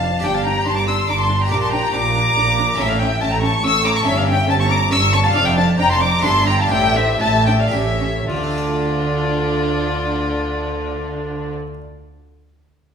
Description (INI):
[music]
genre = classical, baroque-style concerto movement with solo episodes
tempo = 103-142 BPM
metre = 3/4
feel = straight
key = D minor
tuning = A4 = 440 Hz
[part]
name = rich chamber violin section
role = melody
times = 0.0-11.5 s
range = D5 to E6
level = -24 LUFS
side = left 4 dB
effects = none
[part]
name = rich violin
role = melody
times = 0.0-11.5 s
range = F4 to E6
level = -21 LUFS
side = left 1 dB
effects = none
[part]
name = rich studio violin section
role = second line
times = 0.0-11.5 s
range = D4 to C#6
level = -24 LUFS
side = left 1 dB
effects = none
[part]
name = harpsichord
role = accompaniment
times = 0.0-11.8 s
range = F2 to D5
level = -27 LUFS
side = right 1 dB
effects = none
[part]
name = warm studio viola section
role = accompaniment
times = 0.0-11.5 s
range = C#4 to D4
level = -28 LUFS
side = right 2 dB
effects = none
[part]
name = rich chamber double bass section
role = bass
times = 0.0-11.5 s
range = F1 to D2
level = -25 LUFS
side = right 3 dB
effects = none
[part]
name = warm chamber cello section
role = bass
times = 0.0-11.5 s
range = F2 to D3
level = -22 LUFS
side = right 1 dB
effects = none
[sound]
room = wet recital hall reverb, RT60 1.3 s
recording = recorded in a church or concert hall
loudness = -15 LUFS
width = side -7 dB against mid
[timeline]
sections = 0.0-8.3 A section; 8.3-11.8 B section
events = slowing down 4.7-8.3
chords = 0.2 G5; 1.5 Gm/Bb; 2.8 A; 4.1 A7/G; 5.3 Dm/F; 6.2 C13/G; 6.7 A7sus4; 7.7 A7; 8.3 Dm